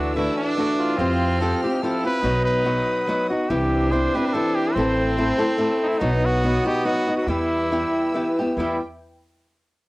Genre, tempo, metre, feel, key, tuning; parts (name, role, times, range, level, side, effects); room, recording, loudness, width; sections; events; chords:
mexican folk, mariachi; 142 BPM; 3/4; swing 53% on 8ths, rubato; E minor; A4 = 440 Hz
bright trumpet; melody; 0.0-8.8 s; D#4 to C5; -25 LUFS; equal; cassette tape
bright trumpet; second line; 0.0-8.8 s; F#3 to E4; -29 LUFS; right 2 dB
flamenco guitar; accompaniment; 0.0-8.8 s; A2 to A4; -22 LUFS; left 1 dB
warm symphonic violin section; sustained chords; 0.0-8.8 s; E4 to F6; -35 LUFS; equal
upright bass; bass; 0.0-8.8 s; A1 to F2; -26 LUFS; equal
light reverb; home recording on cassette; -19 LUFS; side -21 dB against mid
0.0-8.6 A section; 8.6-9.9 B section
0.0 Dadd9; 1.0 Fsus2; 2.2 B; 3.5 C; 4.8 Am; 6.0 B; 7.3 Em